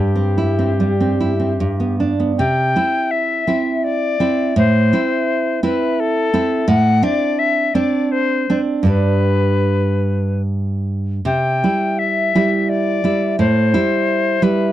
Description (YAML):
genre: romantic duo for recorder and classical guitar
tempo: 70-90 BPM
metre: 3/4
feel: rubato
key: C major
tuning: A4 = 441 Hz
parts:
  - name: mellow alto recorder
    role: melody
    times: 0.0-14.7 s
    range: G4 to G5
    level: -19 LUFS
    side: left 5 dB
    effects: none
  - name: nylon-string guitar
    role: accompaniment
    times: 0.0-14.7 s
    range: G2 to E4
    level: -16 LUFS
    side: right 2 dB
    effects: none
room: light reverb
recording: dry, close 1970s-style studio recording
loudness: -15 LUFS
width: side -13 dB against mid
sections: 0.0-2.4 A section; 2.4-14.7 B section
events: none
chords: 0.0 C/G; 1.6 G; 2.4 C; 4.6 Am; 6.7 D5/A; 8.9 G; 11.3 C; 13.4 Am7